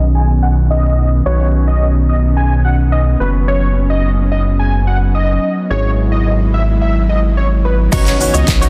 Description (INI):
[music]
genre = dance-pop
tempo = 108 BPM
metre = 4/4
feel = straight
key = B major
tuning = A4 = 440 Hz
[part]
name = warm concert grand piano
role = accompaniment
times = 0.0-8.7 s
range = B3 to C#5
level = -28 LUFS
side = equal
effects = sidechain pumping, low-pass filter
[part]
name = airy breathy pad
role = sustained chords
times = 0.0-8.7 s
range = D#3 to E4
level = -23 LUFS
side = equal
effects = chorus, sidechain pumping, low-pass filter
[part]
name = round analog bass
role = bass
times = 0.0-8.7 s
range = F#1 to C#2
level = -16 LUFS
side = equal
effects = sidechain pumping
[part]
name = unison lead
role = melody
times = 0.1-8.5 s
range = B4 to G#5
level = -23 LUFS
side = equal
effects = sidechain pumping, low-pass filter, dub echo
[part]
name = direct-recorded clean electric guitar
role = riff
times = 7.9-8.7 s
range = D#4 to C#5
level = -24 LUFS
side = equal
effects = analog chorus
[part]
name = organic electronic drum kit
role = drums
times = 7.9-8.7 s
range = crash cymbal, handclaps, hi-hat, kick drum, shaker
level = -16 LUFS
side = equal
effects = none
[part]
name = tube shaker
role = percussion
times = 7.9-8.7 s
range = none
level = -36 LUFS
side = equal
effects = none
[part]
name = impact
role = sound effects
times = 8.0-8.7 s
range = none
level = -25 LUFS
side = equal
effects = none
[sound]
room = light reverb, digital ambience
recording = dense, heavily limited modern master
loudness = -14 LUFS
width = mono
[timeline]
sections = 0.0-7.9 A section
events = filter sweep 0.0-7.9; impact 7.9-8.7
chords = 0.0 Badd9; 3.2 F#sus4; 5.7 Eadd9/G#; 7.9 Badd9